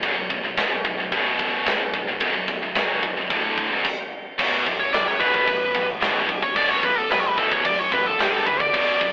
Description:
heavy metal; 110 BPM; 4/4; straight; B minor; A4 = 440 Hz
heavy high-gain guitar; riff; 0.0-9.1 s; B1 to G3; -28 LUFS; equal; distortion
scooped high-gain guitar; riff; 0.0-9.1 s; B1 to G3; -30 LUFS; equal; distortion
growling picked electric bass; bass; 0.0-9.1 s; B0 to A1; -39 LUFS; equal; overdrive
tight metal drum kit; drums; 0.0-9.1 s; crash cymbal, kick drum, ride cymbal, snare drum; -27 LUFS; equal
high-gain lead guitar; melody; 4.8-9.1 s; G4 to D5; -23 LUFS; equal; distortion
light reverb; rough rehearsal-room recording, telephone sound; -22 LUFS; mono
0.0-4.4 A section; 4.4-9.1 B section
stop 3.8-4.4; lead electric guitar solo 4.4-9.1
0.0 Bm; 4.4 B5; 8.2 G5

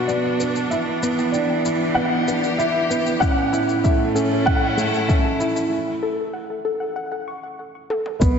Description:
piano and strings electronica; 96 BPM; 4/4; straight; A4 = 440 Hz
felt-muted upright piano; melody; 0.0-8.4 s; B4 to F#5; -25 LUFS; equal; wide subtle chorus, low-pass filter, ping-pong delay
clear string quartet; sustained chords; 0.0-8.4 s; A2 to G4; -25 LUFS; right 1 dB; sidechain pumping
felt-muted upright piano; riff; 0.0-8.4 s; A3 to F#4; -22 LUFS; right 1 dB; lush chorus, ping-pong delay
electronic toms and shaker; drums; 0.1-8.3 s; -36 LUFS; left 3 dB; overdrive, high-pass filter on toms, high-pass filter on perc
soft round pluck; arpeggios; 0.4-8.0 s; A4 to E6; -29 LUFS; left 2 dB; chorus, sidechain pumping, ping-pong delay
electronic kick drum; drums; 3.2-8.3 s; -19 LUFS; equal; overdrive
round analog bass; bass; 8.2-8.4 s; B1; -24 LUFS; equal; sidechain pumping
wet lush hall reverb, RT60 1.9 s, studio reverb; dreamy mix soaked in reverb, nothing above 7.8 kHz; -18 LUFS; side -6 dB against mid
0.0-8.2 A section
build-up 0.0-8.2; filter sweep on synth arpeggio sound 0.0-8.2; filter sweep on felt piano 0.0-8.2; break 5.7-8.2; drum fill 7.9-8.2
0.0 Bm; 0.7 Em7; 3.2 A; 5.7 A5

